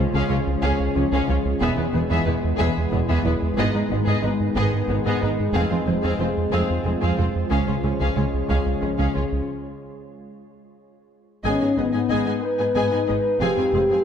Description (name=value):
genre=cinematic, hybrid orchestral and electronic film score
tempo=61 BPM (dotted quarters)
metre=6/8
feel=straight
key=G# minor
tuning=A4 = 440 Hz
part: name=rich studio violin section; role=melody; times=0.0-9.2 s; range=G#4 to E#5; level=-33 LUFS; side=left 4 dB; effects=none
part: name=warm symphonic violin section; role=second line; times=0.0-14.0 s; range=B3 to G#5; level=-31 LUFS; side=left 2 dB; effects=none
part: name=rich studio viola section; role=accompaniment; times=0.0-14.0 s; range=B3 to G#4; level=-30 LUFS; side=right 1 dB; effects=none
part: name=clear trombone section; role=sustained chords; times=0.0-9.4 s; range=D#3 to G#3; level=-33 LUFS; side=right 5 dB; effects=none
part: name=glassy FM pad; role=sustained chords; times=0.0-14.0 s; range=G#3 to C#5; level=-30 LUFS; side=left 1 dB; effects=ensemble chorus, built-in reverb
part: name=mellow French horn section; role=sustained chords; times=0.0-14.0 s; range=B3 to B4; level=-26 LUFS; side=left 3 dB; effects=none
part: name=thumb-piano-like synth pluck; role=arpeggios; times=0.0-14.0 s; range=C#3 to G#4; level=-30 LUFS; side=left 6 dB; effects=chorus, tape echo
part: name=rubbery square bass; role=riff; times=0.0-9.4 s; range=C#2 to G#3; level=-25 LUFS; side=right 2 dB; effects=none
part: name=bright symphonic double bass section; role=bass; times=0.0-13.8 s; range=E1 to C#2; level=-29 LUFS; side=right 3 dB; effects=none
part: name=rich studio cello section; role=bass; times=0.0-14.0 s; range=C#2 to G#2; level=-29 LUFS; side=right 2 dB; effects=none
room=moderate scoring stage reverb, RT60 1.7 s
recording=none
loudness=-19 LUFS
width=side -8 dB against mid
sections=0.0-11.4 A section; 11.4-14.0 B section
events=break 9.5-11.4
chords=0.0 C#; 1.6 E; 3.6 G#m; 5.5 Fm; 7.5 C#; 9.5 N.C.; 11.4 G#m; 13.4 Fm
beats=0.63 | 1.61 2.59 | 3.58 4.56 | 5.54 6.53 | 7.51 8.49 | 9.48 10.46 | 11.45 12.43 | 13.41